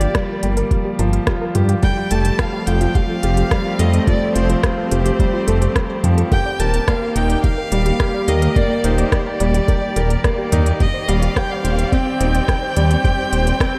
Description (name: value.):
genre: piano and strings electronica.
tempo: 107 BPM.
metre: 4/4.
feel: straight.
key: unclear.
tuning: A4 = 440 Hz.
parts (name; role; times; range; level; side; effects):
rich violin; melody; 0.0-13.8 s; C5 to A5; -27 LUFS; equal; tape echo.
warm string quartet; sustained chords; 0.0-13.8 s; D3 to D5; -28 LUFS; equal; sidechain pumping.
unison pluck; arpeggios; 0.0-13.8 s; F4 to F5; -31 LUFS; equal; none.
clear concert grand piano; riff; 0.0-13.8 s; F3 to C5; -25 LUFS; equal; tape echo.
dark detuned saw bass; bass; 0.0-13.5 s; Eb1 to G2; -19 LUFS; equal; sidechain pumping.
organic electronic drum kit; drums; 0.0-13.7 s; hi-hat, rim click, toms; -28 LUFS; equal; none.
electronic kick drum; drums; 0.1-13.7 s; none; -21 LUFS; equal; overdrive.
room: moderate lush hall reverb, RT60 1.7 s.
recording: dreamy mix soaked in reverb.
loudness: -18 LUFS.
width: mono.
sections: 0.0-13.8 A section.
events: none.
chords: 0.0 Gm7; 1.8 Fadd9; 6.3 Ebmaj7.